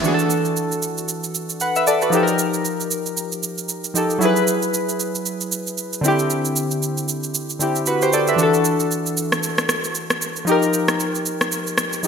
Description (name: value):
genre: amapiano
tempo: 115 BPM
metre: 4/4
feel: swing 58% on 16ths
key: unclear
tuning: A4 = 441 Hz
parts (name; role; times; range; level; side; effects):
- warm analog keys; accompaniment; 0.0-12.1 s; D3 to F#5; -19 LUFS; left 1 dB; chorus
- electronic shaker and rim click; drums; 0.0-12.1 s; none; -23 LUFS; right 3 dB; overdrive, gated reverb
room: moderate lush hall reverb, RT60 1.9 s, digital ambience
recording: bright 1980s-style digital production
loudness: -18 LUFS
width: side -6 dB against mid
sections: 0.0-12.1 A section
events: none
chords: 0.0 E9sus4; 2.1 F9sus4; 4.2 F#9sus4; 6.0 D9sus4; 8.4 E9sus4; 10.5 F9sus4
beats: | 0.04 0.56 1.08 1.60 | 2.13 2.65 3.17 3.69 | 4.21 4.74 5.26 5.78 | 6.30 6.82 7.34 7.87 | 8.39 8.91 9.43 9.95 | 10.47 11.00 11.52 12.04